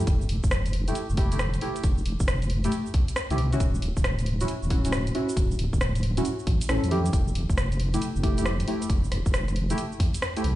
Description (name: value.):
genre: UK garage, two-step garage.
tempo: 136 BPM.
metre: 4/4.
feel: swing 65% on 16ths.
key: unclear.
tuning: A4 = 438 Hz.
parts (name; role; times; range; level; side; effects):
deep mellow chord stab; stabs; 0.0-10.4 s; A3 to A4; -30 LUFS; equal; chorus, ping-pong delay.
deep soft wobble bass; bass; 0.0-10.6 s; D1 to F2; -26 LUFS; equal; chorus.
electronic kick drum; drums; 0.1-10.1 s; none; -25 LUFS; equal; none.
house drum kit; drums; 0.1-10.6 s; hi-hat, rim click, shaker; -33 LUFS; equal; none.
room: light reverb.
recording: played on a big sound system in a bare room, stone room reverb, nothing above 10.4 kHz.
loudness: -23 LUFS.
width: side -15 dB against mid.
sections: 0.0-10.6 A section.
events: kick drops out 10.2-10.6.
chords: 0.0 Fmaj9; 3.6 Dmaj9; 6.9 Fmaj9.